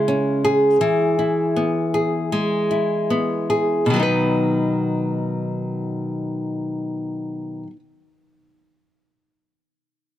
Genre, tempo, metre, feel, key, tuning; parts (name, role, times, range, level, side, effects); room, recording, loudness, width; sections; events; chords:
pop; 73-83 BPM; 4/4; straight; B major; A4 = 440 Hz
nylon-string guitar; accompaniment; 0.0-7.8 s; B2 to B4; -19 LUFS; equal
light reverb; -19 LUFS; side -12 dB against mid
0.0-3.9 A section; 3.9-7.2 B section
slowing down 0.0-3.9
0.0 C#m; 0.8 E; 3.9 B